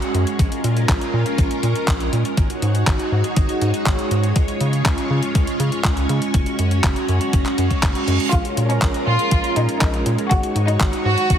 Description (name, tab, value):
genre	italo disco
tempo	121 BPM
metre	4/4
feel	straight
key	Bb minor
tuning	A4 = 440 Hz
part	string machine, full ensemble	sustained chords	0.0-11.4 s	Ab3 to Db5	-22 LUFS	right 1 dB	ensemble chorus
part	clean 12-bit digital drum machine	drums	0.0-11.4 s	handclaps, hi-hat	-26 LUFS	left 1 dB	overdrive
part	round analog bass	bass	0.1-11.4 s	Gb1 to Db3	-21 LUFS	equal	none
part	electronic kick drum	drums	0.4-11.4 s	none	-19 LUFS	equal	overdrive
part	reverse cymbal	sound effects	7.6-8.3 s	none	-29 LUFS	right 6 dB	none
part	rich chamber violin section	melody	8.3-11.4 s	Db4 to Gb4	-22 LUFS	right 1 dB	ping-pong delay
room	light reverb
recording	heavily compressed radio sound, multiband compression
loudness	-16 LUFS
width	side -9 dB against mid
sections	0.0-11.4 A section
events	reverse cymbal 7.6-8.3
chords	0.4 Bbm7; 2.4 Ab7sus4; 4.4 Db; 6.3 Gbsus2; 8.3 Bbm7; 10.3 Ab7sus4